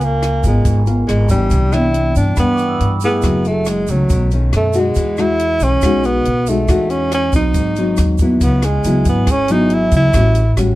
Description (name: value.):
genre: bossa nova.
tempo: 139 BPM.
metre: 4/4.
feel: straight.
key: E major.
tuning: A4 = 436 Hz.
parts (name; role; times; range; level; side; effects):
mellow tenor saxophone; melody; 0.0-10.6 s; F#3 to E4; -18 LUFS; right 1 dB; none.
nylon-string guitar; accompaniment; 0.0-10.8 s; G2 to A#4; -18 LUFS; left 1 dB; none.
vibraphone with medium mallets; accompaniment; 0.0-3.3, 8.6-10.2 s; G5 to E6; -27 LUFS; right 4 dB; none.
upright bass; bass; 0.0-10.8 s; F#1 to G2; -17 LUFS; equal; none.
compact cocktail drum kit; drums; 0.0-10.7 s; hi-hat, kick drum, rim click; -19 LUFS; equal; none.
tube shaker; percussion; 0.0-10.8 s; none; -36 LUFS; right 9 dB; none.
room: light reverb.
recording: none.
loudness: -12 LUFS.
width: side -17 dB against mid.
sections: 0.0-8.4 A section; 8.4-10.8 B section.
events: none.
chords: 0.0 C#6; 1.5 Cmaj9; 3.2 F#m9; 4.1 B9; 5.0 Emaj9; 7.6 G#7; 8.4 C#m7; 10.1 A13.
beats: 0.23 0.66 1.09 | 1.52 1.95 2.38 2.81 | 3.24 3.67 4.11 4.54 | 4.97 5.40 5.83 6.26 | 6.69 7.12 7.55 7.98 | 8.41 8.84 9.28 9.71 | 10.14 10.57.